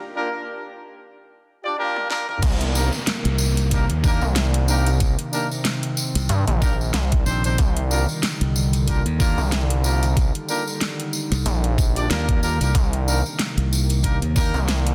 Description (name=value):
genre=glitch hop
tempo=93 BPM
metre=4/4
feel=swing 57% on 16ths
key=C minor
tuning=A4 = 442 Hz
part: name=clear horn section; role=stabs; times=0.2-14.6 s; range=Bb3 to D5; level=-30 LUFS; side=equal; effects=sidechain pumping, tape echo
part: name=dubstep drum kit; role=drums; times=2.0-14.9 s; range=crash cymbal, hi-hat, snare drum, toms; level=-29 LUFS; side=equal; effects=small room ambience
part: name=warbly tape-like pad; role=sustained chords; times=2.9-14.9 s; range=C3 to C4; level=-32 LUFS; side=equal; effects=chorus, built-in reverb, phaser, sidechain pumping
part: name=gritty driven synth bass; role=bass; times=2.4-14.9 s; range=Bb1 to G2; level=-23 LUFS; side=equal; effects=none
part: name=electronic kick drum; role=drums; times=2.4-14.5 s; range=none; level=-23 LUFS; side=equal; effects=small room ambience
part: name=tambourine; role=percussion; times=2.4-14.8 s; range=none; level=-33 LUFS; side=equal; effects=none
part: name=downlifter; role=sound effects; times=2.5-7.6 s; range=none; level=-36 LUFS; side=equal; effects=none
part: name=modern bright fingered electric bass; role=bass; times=3.3-14.5 s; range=Bb1 to Eb2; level=-23 LUFS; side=equal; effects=none
room=light reverb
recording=dense, heavily limited modern master, high-pass filter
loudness=-21 LUFS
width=mono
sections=0.0-2.4 A section; 2.4-14.9 B section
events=break 0.0-2.4; build-up 0.0-2.4; filter sweep 0.0-2.4; drum fill 1.9-2.4; drop 2.4-14.9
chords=0.0 Ebmaj7 (rootless); 2.4 Cm7; 7.6 Ebmaj7/C; 12.7 Cm7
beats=0.49 1.14 1.78 | 2.42 3.07 3.71 4.36 | 5.01 5.65 6.30 6.94 | 7.59 8.23 8.88 9.52 | 10.17 10.81 11.46 12.10 | 12.75 13.39 14.04 14.68